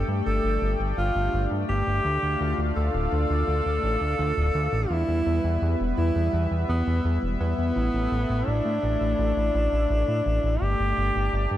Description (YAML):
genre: synthwave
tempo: 84 BPM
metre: 4/4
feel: straight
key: D dorian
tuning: A4 = 443 Hz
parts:
  - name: warm alto saxophone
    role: melody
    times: 0.0-11.5 s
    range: B3 to A4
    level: -27 LUFS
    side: equal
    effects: ping-pong delay
  - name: warm analog pad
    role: sustained chords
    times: 0.0-11.6 s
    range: G3 to G5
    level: -31 LUFS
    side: left 1 dB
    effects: chorus
  - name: fat analog bass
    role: bass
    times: 0.0-11.6 s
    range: D1 to A2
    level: -25 LUFS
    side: equal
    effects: none
room: small room ambience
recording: none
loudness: -22 LUFS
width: side -12 dB against mid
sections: 0.0-11.6 A section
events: none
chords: 0.0 Gsus2; 2.0 Dm; 4.9 Em; 7.8 A5; 10.6 Gsus2